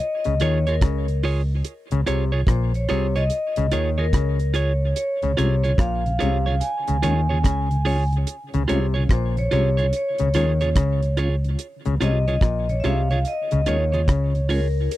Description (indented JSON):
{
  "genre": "roots reggae",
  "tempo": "72 BPM",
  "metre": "4/4",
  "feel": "swing 64% on 16ths",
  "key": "Db major",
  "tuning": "A4 = 440 Hz",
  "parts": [
    { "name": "vibraphone with medium hard mallets", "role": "melody", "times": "0.0-15.0 s", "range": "Bb4 to Ab5", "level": "-26 LUFS", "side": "equal", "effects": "tape echo" },
    { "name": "deep reggae drum kit", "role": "drums", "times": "0.2-15.0 s", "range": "hi-hat, kick drum, rim click", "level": "-21 LUFS", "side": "equal", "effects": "none" },
    { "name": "overdriven clav", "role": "riff", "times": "0.3-14.3 s", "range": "Bb2 to Eb3", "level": "-28 LUFS", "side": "left 7 dB", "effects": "none" },
    { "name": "fingered electric bass", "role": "bass", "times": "0.3-14.9 s", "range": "Bb1 to Eb2", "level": "-21 LUFS", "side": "equal", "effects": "none" },
    { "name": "clean electric guitar", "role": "accompaniment", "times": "0.4-14.7 s", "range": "F4 to Db5", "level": "-28 LUFS", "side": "right 5 dB", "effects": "tape echo" },
    { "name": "mellow tonewheel organ", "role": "accompaniment", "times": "5.2-14.6 s", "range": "Db3 to F4", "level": "-30 LUFS", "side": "left 1 dB", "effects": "chorus vibrato, slow rotary speaker, tape echo" }
  ],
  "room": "little or no reverb",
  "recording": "dry, close 1970s-style studio recording",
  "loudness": "-19 LUFS",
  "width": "side -15 dB against mid",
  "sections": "0.0-11.6 A section; 11.6-15.0 B section",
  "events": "vibraphone solo 11.6-15.0",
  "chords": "0.0 Db",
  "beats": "0.82 | 1.65 2.48 3.31 4.13 | 4.96 5.79 6.62 7.45 | 8.28 9.10 9.93 10.76 | 11.59 12.42 13.25 14.08 | 14.91"
}